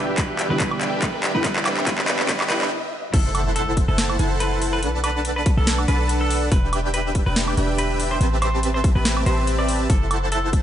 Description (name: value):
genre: future bass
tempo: 142 BPM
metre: 4/4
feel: swing 54% on 16ths, half-time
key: E minor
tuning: A4 = 441 Hz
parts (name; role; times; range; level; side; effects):
- semi-hollow electric guitar; melody; 0.0-10.5 s; A4 to D5; -28 LUFS; equal; sidechain pumping, dub echo
- soft round pluck; accompaniment; 0.0-2.7 s; D3 to E4; -30 LUFS; right 2 dB; chorus, sidechain pumping, tape echo
- rich studio string section; sustained chords; 0.0-2.7 s; C3 to G4; -35 LUFS; left 2 dB; none
- dense compressed supersaw; riff; 0.0-10.6 s; C4 to A5; -25 LUFS; right 1 dB; sidechain pumping, low-pass filter
- warm 808-style bass; bass; 0.0-10.6 s; E1 to E2; -23 LUFS; equal; tube saturation, sidechain pumping
- riser and impact; sound effects; 0.1-4.8 s; none; -32 LUFS; equal; none
- electronic kick drum; drums; 0.2-10.6 s; none; -20 LUFS; equal; overdrive, studio reverb
- trap drum kit; drums; 0.2-10.6 s; crash cymbal, handclaps, hi-hat, snare drum, woodblock; -24 LUFS; equal; overdrive, studio reverb
room: light reverb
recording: high-pass filter, nothing above 10.7 kHz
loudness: -18 LUFS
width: side -10 dB against mid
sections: 0.0-3.1 A section; 3.1-10.6 B section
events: build-up 0.0-3.1; drum fill 0.0-2.7; riser 0.1-2.7; stop 2.7-3.1; drop 3.1-10.6; impact 3.1-4.8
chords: 0.0 Em7; 1.4 Am9; 3.1 F#m7b5; 4.8 Bm7; 6.5 Em7; 8.2 Am9; 9.9 F#m7b5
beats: 0.18 0.60 1.02 | 1.45 1.87 2.29 2.71 | 3.14 3.56 3.98 4.40 | 4.83 5.25 5.67 6.09 | 6.52 6.94 7.36 7.78 | 8.21 8.63 9.05 9.47 | 9.90 10.32